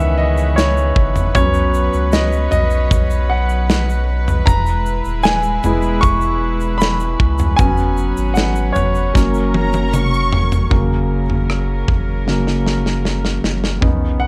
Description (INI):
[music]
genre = pop ballad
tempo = 77 BPM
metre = 4/4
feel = straight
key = unclear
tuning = A4 = 440 Hz
[part]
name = warm concert grand piano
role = accompaniment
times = 0.0-14.3 s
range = C#3 to C#6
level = -21 LUFS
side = equal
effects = none
[part]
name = warm studio string section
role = sustained chords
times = 0.0-14.3 s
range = C#3 to B4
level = -28 LUFS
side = equal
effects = none
[part]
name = saturated sub bass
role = bass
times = 0.0-14.3 s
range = D#1 to C#2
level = -22 LUFS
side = equal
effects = none
[part]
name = tube shaker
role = percussion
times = 0.4-10.7 s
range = none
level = -42 LUFS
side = equal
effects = none
[part]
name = modern studio drum kit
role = drums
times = 0.6-14.0 s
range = kick drum, rim click, snare drum, toms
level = -21 LUFS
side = equal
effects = none
[part]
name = warm studio violin section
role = second line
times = 9.5-10.7 s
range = A#5 to C#6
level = -24 LUFS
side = equal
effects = none
[sound]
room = light reverb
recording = none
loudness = -16 LUFS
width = mono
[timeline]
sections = 0.0-10.7 A section; 10.7-13.8 B section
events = grand piano solo 0.0-10.7, 10.7-13.8; drum fill 9.1-10.7, 12.3-13.8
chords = 0.0 C#m7; 1.4 Bsus2; 4.5 E; 7.6 F#sus4; 9.1 F#